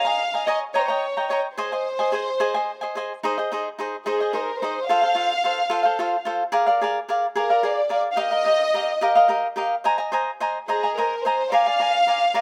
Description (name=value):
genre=mexican folk, mariachi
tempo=72 BPM (dotted quarters)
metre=6/8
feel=straight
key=Ab major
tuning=A4 = 441 Hz
part: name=dark studio violin section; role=melody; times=0.0-12.4 s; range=Ab4 to F5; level=-25 LUFS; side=equal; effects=none
part: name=cavaquinho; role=accompaniment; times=0.0-12.4 s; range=Eb4 to Bb5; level=-24 LUFS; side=equal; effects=none
room=light reverb, small room ambience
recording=rough home demo mix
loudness=-22 LUFS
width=mono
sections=0.0-3.2 A section; 3.2-12.4 B section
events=none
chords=0.0 Eb7sus4; 0.7 Eb7; 1.6 Ab; 4.9 F; 6.5 Bb7; 8.2 Ebadd9; 9.9 Abadd9; 11.5 Bb7